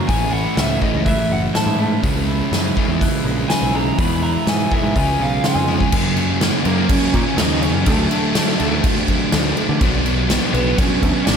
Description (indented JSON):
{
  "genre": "quiet-loud alternative rock",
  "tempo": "124 BPM",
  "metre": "4/4",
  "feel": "straight",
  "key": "unclear",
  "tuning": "A4 = 440 Hz",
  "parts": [
    { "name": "twelve-string electric guitar", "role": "arpeggios", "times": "0.0-5.9 s", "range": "E2 to E#4", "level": "-28 LUFS", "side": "right 2 dB", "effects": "slapback echo, tape echo" },
    { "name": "sludgy distorted guitar", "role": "riff", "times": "0.0-11.4 s", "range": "E2 to D4", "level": "-22 LUFS", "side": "left 9 dB", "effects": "overdrive, slapback echo" },
    { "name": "thick fuzz guitar", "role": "riff", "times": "0.0-11.4 s", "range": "F#2 to E#4", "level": "-23 LUFS", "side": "right 11 dB", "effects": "distortion, slapback echo" },
    { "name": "lead guitar through a small cranked amp", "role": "melody", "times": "0.1-11.4 s", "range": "A3 to B5", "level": "-23 LUFS", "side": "right 1 dB", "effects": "overdrive, slapback echo, tape echo" },
    { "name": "overdriven picked electric bass", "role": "bass", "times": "0.1-11.4 s", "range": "F#1 to D3", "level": "-22 LUFS", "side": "equal", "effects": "none" },
    { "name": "big rock drum kit", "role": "drums", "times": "0.1-11.4 s", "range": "crash cymbal, hi-hat, kick drum, snare drum, toms", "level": "-20 LUFS", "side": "equal", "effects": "none" }
  ],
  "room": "moderate lush hall reverb, RT60 1.8 s, studio ambience",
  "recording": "big arena sound",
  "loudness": "-15 LUFS",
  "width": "side -7 dB against mid",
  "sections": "0.0-5.9 A section; 5.9-11.4 B section",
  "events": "lead electric guitar solo 0.0-5.9; drum fill 5.7",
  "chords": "0.1 A; 2.0 C#m; 4.0 E; 5.0 C#7; 5.9 F#; 7.9 D; 9.8 Bm",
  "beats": "| 0.09 0.57 1.06 1.55 | 2.04 2.52 3.01 3.50 | 3.98 4.47 4.96 5.44 | 5.93 6.41 6.90 7.39 | 7.87 8.36 8.84 9.33 | 9.81 10.30 10.79 11.27"
}